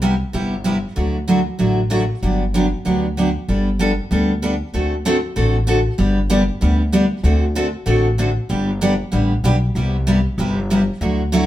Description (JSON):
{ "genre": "country, western swing", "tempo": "191 BPM", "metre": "4/4", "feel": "swing 61% on 8ths", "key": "G major", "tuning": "A4 = 440 Hz", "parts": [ { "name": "picked steel-string acoustic guitar", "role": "accompaniment", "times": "0.0-11.4 s", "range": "C3 to A4", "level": "-18 LUFS", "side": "equal", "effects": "none" }, { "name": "upright bass", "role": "bass", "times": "0.0-11.5 s", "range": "G1 to D2", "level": "-20 LUFS", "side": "equal", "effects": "none" } ], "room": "moderate studio reverb, RT60 0.8 s", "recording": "band playing live in one room", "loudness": "-16 LUFS", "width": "side -13 dB against mid", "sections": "0.0-3.5 A section; 3.5-11.5 B section", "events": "none", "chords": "0.0 Cmaj7; 1.0 Dadd9; 2.2 Gmaj7; 3.5 Gadd9; 4.7 D7; 6.0 G; 7.2 D7; 8.5 G; 9.8 Cmaj7" }